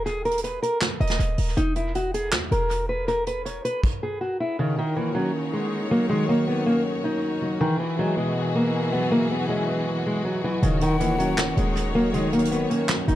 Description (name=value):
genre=hip hop, trap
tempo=159 BPM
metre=4/4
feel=half-time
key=Eb phrygian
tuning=A4 = 442 Hz
part: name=fingerpicked steel-string acoustic guitar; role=melody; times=0.0-13.2 s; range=Db3 to Eb5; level=-25 LUFS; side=equal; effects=low-pass filter, dub echo
part: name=short 808-style bass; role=bass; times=0.0-3.6, 10.6-13.2 s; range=Eb1 to E2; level=-27 LUFS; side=equal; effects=none
part: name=soft brush drum kit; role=drums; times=0.1-3.9, 10.6-13.1 s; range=crash cymbal, handclaps, hi-hat, kick drum, snare drum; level=-27 LUFS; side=right 1 dB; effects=dub echo
part: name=dark grand piano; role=accompaniment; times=4.6-13.2 s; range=B2 to Db4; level=-26 LUFS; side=equal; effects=low-pass filter, dub echo
part: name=warm studio string section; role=sustained chords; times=4.6-13.2 s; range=Eb3 to Db5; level=-31 LUFS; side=left 2 dB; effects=none
part: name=breathy mellow silver concert flute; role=second line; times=10.8-11.7 s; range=Gb5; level=-32 LUFS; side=left 5 dB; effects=dub echo
room=light reverb, studio ambience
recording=echo-heavy mix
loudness=-21 LUFS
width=side -13 dB against mid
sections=0.0-4.6 A section; 4.6-13.2 B section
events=none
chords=0.0 N.C.; 4.6 Ebm7; 7.6 Eadd9; 10.6 Ebm7